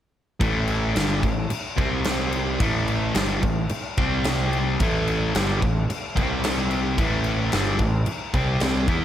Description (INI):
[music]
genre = hard rock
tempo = 110 BPM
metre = 4/4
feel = straight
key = A minor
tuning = A4 = 439 Hz
[part]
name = sludgy distorted guitar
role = riff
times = 0.4-9.0 s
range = G2 to E4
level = -24 LUFS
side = equal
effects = overdrive
[part]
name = fuzz picked electric bass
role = bass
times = 0.4-9.0 s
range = G1 to E2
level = -27 LUFS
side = equal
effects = overdrive
[part]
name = huge arena drum kit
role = drums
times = 0.4-9.0 s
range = crash cymbal, kick drum, snare drum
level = -26 LUFS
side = equal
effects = none
[sound]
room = studio ambience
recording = none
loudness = -21 LUFS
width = side -11 dB against mid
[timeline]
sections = 0.4-9.0 A section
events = none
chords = 0.4 A5; 1.8 C5; 2.6 A5; 4.0 C5; 4.8 A5; 6.2 C5; 7.0 Am